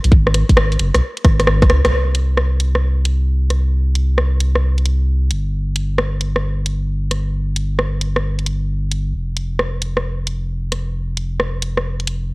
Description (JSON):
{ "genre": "UK garage, two-step garage", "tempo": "133 BPM", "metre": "4/4", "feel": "swing 67% on 16ths", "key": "unclear", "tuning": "A4 = 441 Hz", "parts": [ { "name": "saturated sub bass", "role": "bass", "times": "0.0-12.3 s", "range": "F1 to Db2", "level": "-17 LUFS", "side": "equal", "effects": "none" }, { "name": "garage drum kit", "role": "drums", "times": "0.0-12.2 s", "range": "hi-hat, rim click", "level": "-19 LUFS", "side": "equal", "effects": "overdrive, cassette tape" }, { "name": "electronic kick drum", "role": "drums", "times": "0.1-1.7 s", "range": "none", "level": "-11 LUFS", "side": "equal", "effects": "overdrive, cassette tape" } ], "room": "digital ambience", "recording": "home recording on cassette", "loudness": "-16 LUFS", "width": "side -24 dB against mid", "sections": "0.0-1.9 A section; 1.9-12.3 B section", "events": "drum fill 1.2-1.9; band accent 1.8", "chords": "none" }